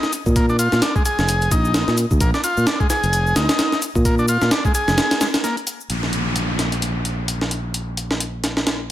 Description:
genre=breakbeat, breaks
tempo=130 BPM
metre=4/4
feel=swing 58% on 16ths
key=unclear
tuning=A4 = 443 Hz
part: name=combo organ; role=riff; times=0.0-5.6 s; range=Ab3 to Ab4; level=-21 LUFS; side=left 1 dB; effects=vintage 12-bit sampler grit, ping-pong delay
part: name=breakbeat sampler-style drum kit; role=drums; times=0.0-8.8 s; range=hi-hat, kick drum, snare drum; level=-20 LUFS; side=equal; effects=high-pass filter on hats, high-pass filter on kick, high-pass filter on snare
part: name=shaker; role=drums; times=0.0-5.9 s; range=none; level=-31 LUFS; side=left 6 dB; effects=none
part: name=fingered electric bass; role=bass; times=0.3-8.9 s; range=F1 to Bb2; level=-21 LUFS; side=equal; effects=low-pass filter
part: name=downlifter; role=sound effects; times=5.9-8.9 s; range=none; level=-27 LUFS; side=left 1 dB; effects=none
room=light reverb, digital ambience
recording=none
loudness=-17 LUFS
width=side -13 dB against mid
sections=0.0-5.9 A section; 5.9-8.9 B section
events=break 5.0-5.9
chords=0.0 Bb7; 5.9 N.C.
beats=| 0.36 0.82 1.28 1.75 | 2.21 2.67 3.13 3.59 | 4.05 4.51 4.98 5.44 | 5.90 6.36 6.82 7.29 | 7.75 8.21 8.67

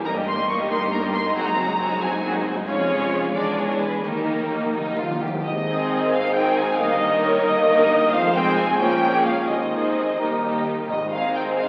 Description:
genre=classical, dramatic, fast romantic movement for symphony orchestra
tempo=85-93 BPM (dotted quarters)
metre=6/8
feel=rubato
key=Ab major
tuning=A4 = 440 Hz
part: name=rich studio violin section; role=melody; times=0.0-11.7 s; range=Bb4 to Db6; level=-28 LUFS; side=equal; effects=none
part: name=rich symphonic violin section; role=second line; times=0.0-11.7 s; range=C4 to Eb5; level=-30 LUFS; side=equal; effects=none
part: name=warm symphonic viola section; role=accompaniment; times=0.0-11.7 s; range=Eb3 to Eb4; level=-29 LUFS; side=equal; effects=none
part: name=concert harp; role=arpeggios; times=0.0-11.7 s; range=F2 to C6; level=-32 LUFS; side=equal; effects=none
part: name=rich symphonic cello section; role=bass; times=0.0-11.7 s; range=Eb2 to Bb2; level=-34 LUFS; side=equal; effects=none
part: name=warm symphonic double bass section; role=bass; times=0.0-11.7 s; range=E1 to Eb2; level=-36 LUFS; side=equal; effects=none
part: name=timpani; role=percussion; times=4.0-5.4, 10.9-11.5 s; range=Ab2 to Eb3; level=-35 LUFS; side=equal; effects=none
part: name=hollow concert flute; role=second line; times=5.4-11.6 s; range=Db5 to Ab5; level=-28 LUFS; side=equal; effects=none
part: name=mellow French horn section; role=sustained chords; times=5.4-11.7 s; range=G3 to Bb4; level=-31 LUFS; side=equal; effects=none
part: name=mellow trumpet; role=stabs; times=5.4-11.7 s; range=Bb4 to Eb5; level=-29 LUFS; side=equal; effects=none
room=wet recital hall reverb, RT60 1.8 s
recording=very old 78 rpm record, vinyl crackle, nothing above 10.5 kHz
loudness=-21 LUFS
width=mono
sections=0.0-5.4 A section; 5.4-11.7 B section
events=timpani fill 4.0-5.4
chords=0.0 Eb/G; 1.4 Ab7/Gb; 2.7 Db/F; 3.3 E7; 4.0 Eb; 5.4 Ab; 6.8 Eb/G; 8.1 Fm; 8.8 Bbm7; 9.5 Ab/Eb; 10.2 Eb; 10.9 Ab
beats=| 0.04 0.70 | 1.35 2.00 | 2.66 3.34 | 4.03 4.73 | 5.43 6.12 | 6.79 7.45 | 8.12 8.79 | 9.48 10.18 | 10.89 11.57

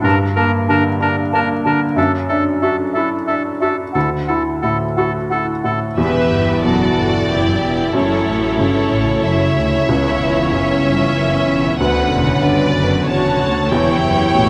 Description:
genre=cinematic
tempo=93 BPM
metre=3/4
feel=rubato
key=D major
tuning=A4 = 440 Hz
part: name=clear oboe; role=second line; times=0.0-5.8 s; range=A4 to Bb4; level=-24 LUFS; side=equal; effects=none
part: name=mellow clarinet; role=second line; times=0.0-5.8 s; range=D4 to E4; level=-28 LUFS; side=equal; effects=none
part: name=felt-muted upright piano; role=accompaniment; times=0.0-14.5 s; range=C#2 to F#4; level=-21 LUFS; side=equal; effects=none
part: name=concert harp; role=arpeggios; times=0.0-14.5 s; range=F#2 to A5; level=-26 LUFS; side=equal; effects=none
part: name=concert flute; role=second line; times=0.1-5.7 s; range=E5 to A5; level=-27 LUFS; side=equal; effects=none
part: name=warm symphonic violin section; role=melody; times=6.0-14.5 s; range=C#5 to A5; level=-24 LUFS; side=equal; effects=none
part: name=warm symphonic violin section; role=second line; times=6.0-14.5 s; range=G4 to C#5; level=-25 LUFS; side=equal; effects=none
part: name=rich symphonic viola section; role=accompaniment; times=6.0-14.5 s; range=D3 to G4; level=-26 LUFS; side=equal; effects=none
part: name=mellow French horn section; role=sustained chords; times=6.0-14.5 s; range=A3 to G4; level=-24 LUFS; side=equal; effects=none
part: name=clear symphonic double bass section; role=bass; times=6.0-14.5 s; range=E1 to D2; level=-27 LUFS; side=equal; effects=none
part: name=rich symphonic cello section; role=bass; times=6.0-14.5 s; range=C#2 to A2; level=-26 LUFS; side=equal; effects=none
room=moderate concert hall reverb, RT60 2.0 s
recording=none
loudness=-16 LUFS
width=mono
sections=0.0-6.0 A section; 6.0-14.5 B section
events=none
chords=0.0 Gmadd9; 2.0 Dadd9/F#; 3.9 Dadd9; 6.0 Em; 7.9 F#m7; 9.9 C#m7b5; 11.8 Bmadd9; 13.7 Em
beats=| 0.05 0.69 1.33 | 1.97 2.62 3.28 | 3.95 4.62 5.30 | 5.97 6.63 7.29 | 7.94 8.59 9.23 | 9.88 10.52 11.15 | 11.79 12.43 13.07 | 13.71 14.35

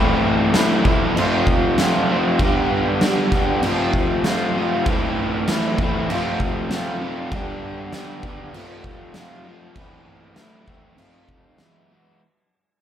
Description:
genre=garage rock duo or trio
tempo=98 BPM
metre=4/4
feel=straight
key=A minor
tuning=A4 = 440 Hz
part: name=crunchy overdriven guitar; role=riff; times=0.0-12.2 s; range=E2 to G4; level=-20 LUFS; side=equal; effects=spring reverb
part: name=oversized low-tuned drum kit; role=drums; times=0.5-11.7 s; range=crash cymbal, kick drum, snare drum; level=-23 LUFS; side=equal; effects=none
room=moderate club reverb, RT60 0.6 s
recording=none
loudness=-17 LUFS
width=side -10 dB against mid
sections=0.0-12.2 A section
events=fade-out 0.0-12.2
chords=0.0 Am; 1.2 F; 2.4 G; 3.6 F; 4.9 Am; 6.1 F; 7.3 G; 8.5 F; 9.8 Am; 11.0 F; 11.6 E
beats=0.55 1.16 1.78 | 2.40 3.01 3.63 4.24 | 4.86 5.47 6.09 6.70 | 7.31 7.92 8.54 9.15 | 9.76 10.37 10.98 11.59

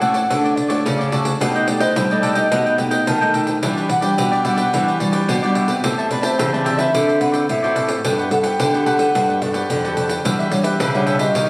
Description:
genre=samba and choro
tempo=109 BPM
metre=4/4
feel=straight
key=unclear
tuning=A4 = 440 Hz
part: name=baroque flute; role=melody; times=0.0-11.5 s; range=B4 to A5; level=-24 LUFS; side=equal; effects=analog delay
part: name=cavaquinho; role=accompaniment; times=0.0-11.5 s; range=D4 to A5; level=-25 LUFS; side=equal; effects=none
part: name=nylon-string guitar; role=accompaniment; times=0.0-11.5 s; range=A2 to B4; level=-25 LUFS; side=equal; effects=none
part: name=nylon-string guitar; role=bass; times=0.0-11.5 s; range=E2 to G3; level=-24 LUFS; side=equal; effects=none
part: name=pandeiro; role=percussion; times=0.0-11.5 s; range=none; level=-27 LUFS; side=equal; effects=none
room=light reverb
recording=recorded on a phone in the room, studio reverb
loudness=-18 LUFS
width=mono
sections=0.0-11.5 A section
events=none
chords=0.0 Dmaj7; 1.4 Baug7; 3.6 Em9; 5.8 Am9; 6.9 D6; 8.0 Gmaj9; 10.2 Em9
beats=0.31 0.86 | 1.41 1.97 2.52 3.08 | 3.63 4.18 4.73 5.29 | 5.84 6.39 6.94 7.50 | 8.05 8.60 9.15 9.70 | 10.25 10.80 11.35

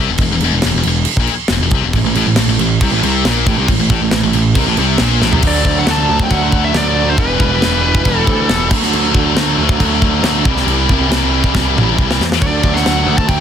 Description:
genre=heavy metal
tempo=137 BPM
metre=4/4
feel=straight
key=unclear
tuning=A4 = 442 Hz
part: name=heavy high-gain guitar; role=riff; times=0.0-13.4 s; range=E2 to A3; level=-18 LUFS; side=left 15 dB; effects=distortion
part: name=fuzz picked electric bass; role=bass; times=0.0-13.4 s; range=E1 to E2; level=-17 LUFS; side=equal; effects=overdrive
part: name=tight metal drum kit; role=drums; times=0.2-13.4 s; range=crash cymbal, kick drum, snare drum, toms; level=-16 LUFS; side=equal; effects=soft clipping on kick
part: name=distorted electric guitar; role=riff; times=2.0-13.4 s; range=A2 to G3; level=-19 LUFS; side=right 12 dB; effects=distortion
part: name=high-gain lead guitar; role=melody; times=5.5-8.7, 12.4-13.4 s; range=B4 to A5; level=-19 LUFS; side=equal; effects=distortion, tape echo
room=small room ambience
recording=dense, heavily limited modern master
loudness=-11 LUFS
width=side -8 dB against mid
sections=0.0-5.4 A section; 5.4-13.4 B section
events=drum fill 5.2, 11.5-12.4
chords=0.0 C/E; 1.9 Am; 5.4 D; 7.2 Em; 8.7 D; 10.5 C; 12.4 D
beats=| 0.20 0.63 1.07 1.51 | 1.95 2.38 2.82 3.26 | 3.69 4.13 4.57 5.00 | 5.44 5.88 6.31 6.75 | 7.19 7.62 8.06 8.50 | 8.93 9.37 9.80 10.24 | 10.68 11.11 11.55 11.98 | 12.42 12.86 13.29

